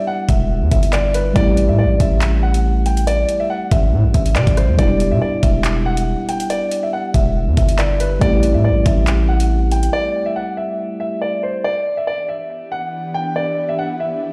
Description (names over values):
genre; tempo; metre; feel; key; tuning
hip hop, drill; 140 BPM; 4/4; half-time; E minor; A4 = 440 Hz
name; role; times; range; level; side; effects
dark concert grand piano; melody; 0.0-14.3 s; B4 to G5; -23 LUFS; equal; tape echo
muted felt-like synth keys; accompaniment; 0.0-11.7 s; G3 to G4; -26 LUFS; equal; chorus
hard-hitting 808-style bass; bass; 0.3-9.9 s; E1 to C3; -19 LUFS; equal; none
drill drum kit; drums; 0.3-9.9 s; handclaps, hi-hat, kick drum, rim click; -21 LUFS; equal; none
ethereal airy pad; sustained chords; 12.2-14.3 s; E3 to G4; -30 LUFS; equal; ensemble chorus, built-in reverb
room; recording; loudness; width
digital ambience; played on a big sound system in a bare room, stone room reverb; -17 LUFS; mono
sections
0.0-11.6 A section; 11.6-14.3 B section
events
break 9.9-11.6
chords
0.0 Em7; 1.4 Am7; 4.8 Em7; 8.2 Am7; 11.6 Em7